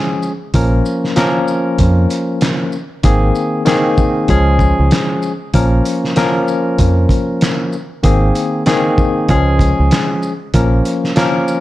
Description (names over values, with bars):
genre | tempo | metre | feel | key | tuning
hip hop, boom-bap hip-hop | 96 BPM | 4/4 | swing 61% on 16ths | Bb minor | A4 = 440 Hz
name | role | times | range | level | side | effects
barky tine electric piano | accompaniment | 0.0-11.6 s | Eb3 to Bb4 | -15 LUFS | left 2 dB | medium stereo tremolo
cloth-damped thuddy drum kit | drums | 0.2-11.6 s | handclaps, hi-hat, kick drum, shaker, snare drum | -16 LUFS | right 1 dB | none
deep dub fingered electric bass | bass | 0.5-10.8 s | Ab1 to F2 | -13 LUFS | right 1 dB | none
room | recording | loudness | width
light reverb, small room ambience | none | -12 LUFS | side -16 dB against mid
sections
0.0-11.6 A section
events
none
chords
0.0 Db; 0.5 Bbm; 3.0 Abadd9; 4.3 Db; 5.5 Bbm; 8.0 Abadd9; 9.3 Db; 10.5 Bbm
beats
| 0.54 1.16 1.79 2.41 | 3.04 3.66 4.29 4.91 | 5.54 6.16 6.79 7.41 | 8.04 8.66 9.29 9.91 | 10.54 11.16